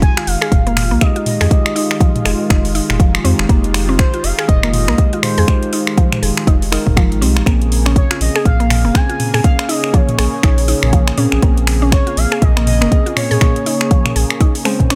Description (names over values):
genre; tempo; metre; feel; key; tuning
afro house; 121 BPM; 4/4; swing 59% on 16ths; Bb dorian; A4 = 440 Hz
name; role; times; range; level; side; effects
expressive synth lead; melody; 0.0-14.1 s; C5 to Ab5; -26 LUFS; equal; subtle chorus, dub echo
warm analog pad; sustained chords; 0.0-15.0 s; Db3 to Ab4; -27 LUFS; equal; chorus, sidechain pumping
bell-like tine electric piano; stabs; 0.0-15.0 s; Ab3 to C5; -25 LUFS; equal; sidechain pumping, dub echo
warm sub bass; bass; 0.0-14.2 s; F1 to Bb2; -19 LUFS; equal; sidechain pumping
afro-pop drum kit; drums; 0.0-15.0 s; finger snaps, hi-hat, toms; -22 LUFS; equal; small room ambience
electronic kick drum; drums; 0.0-14.9 s; none; -15 LUFS; equal; small room ambience
mallet-like synth pluck; arpeggios; 0.2-15.0 s; F3 to Ab4; -24 LUFS; equal; chorus, sidechain pumping, dub echo
room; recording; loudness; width
little or no reverb; none; -14 LUFS; mono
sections
0.0-15.0 A section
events
none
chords
0.0 Fm7; 7.5 Bbm7